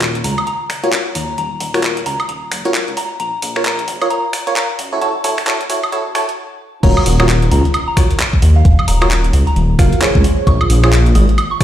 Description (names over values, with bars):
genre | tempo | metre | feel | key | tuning
UK garage, two-step garage | 132 BPM | 4/4 | swing 60% on 16ths | Eb minor | A4 = 440 Hz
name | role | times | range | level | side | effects
dark detuned saw bass | bass | 0.0-11.3 s | Eb1 to Gb2 | -14 LUFS | equal | tube saturation
breakbeat sampler-style drum kit | drums | 0.0-11.6 s | crash cymbal, finger snaps, handclaps, hi-hat, woodblock | -20 LUFS | equal | none
soft synth bell | melody | 0.2-11.6 s | F5 to Eb6 | -24 LUFS | left 1 dB | chorus, phaser, dub echo
FM electric piano | stabs | 0.8-11.6 s | Fb4 to F5 | -19 LUFS | right 1 dB | chorus, phaser, low-pass filter, ping-pong delay
electronic kick drum | drums | 6.8-11.6 s | none | -12 LUFS | equal | overdrive
room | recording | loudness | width
moderate small room ambience, RT60 0.5 s | played on a big sound system in a bare room, large studio reverb, high-pass filter | -12 LUFS | side -11 dB against mid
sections
0.0-6.8 A section; 6.8-11.6 B section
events
build-up 0.0-6.8; filter sweep on FM electric piano 0.0-6.8; stop 6.4-6.8; drop 6.8-11.6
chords
0.0 Eb7(no3); 3.0 Bbm; 4.8 Gbm7; 6.8 Ebm9; 10.2 Bbm9